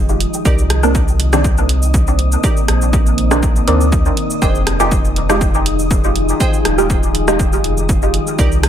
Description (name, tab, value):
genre	dub techno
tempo	121 BPM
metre	4/4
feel	swing 53% on 16ths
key	F minor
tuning	A4 = 440 Hz
part	deep dark ambient pad	sustained chords	0.0-8.7 s	Bb3 to C5	-22 LUFS	left 2 dB	chorus, built-in reverb, sidechain pumping
part	soft dub sub bass	bass	0.0-8.7 s	Eb1 to D2	-17 LUFS	equal	sidechain pumping
part	wind-like tuned noise texture	texture	0.0-8.7 s	Eb4 to Eb6	-27 LUFS	equal	built-in reverb, sidechain pumping
part	punchy analog drum machine	drums	0.1-8.7 s	hi-hat, rim click, shaker	-22 LUFS	right 1 dB	overdrive
part	wavetable chord stab	riff	0.5-8.5 s	Eb4 to G5	-26 LUFS	right 4 dB	sidechain pumping, dub echo
part	electronic kick drum	drums	0.5-8.5 s	none	-16 LUFS	equal	overdrive
part	filtered dub chord stab	stabs	0.8-7.4 s	Eb3 to G4	-19 LUFS	right 2 dB	chorus, phaser, sidechain pumping, dub echo
room	light reverb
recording	none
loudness	-12 LUFS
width	side -10 dB against mid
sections	0.0-8.7 A section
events	none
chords	0.5 Cm9; 4.4 Fm9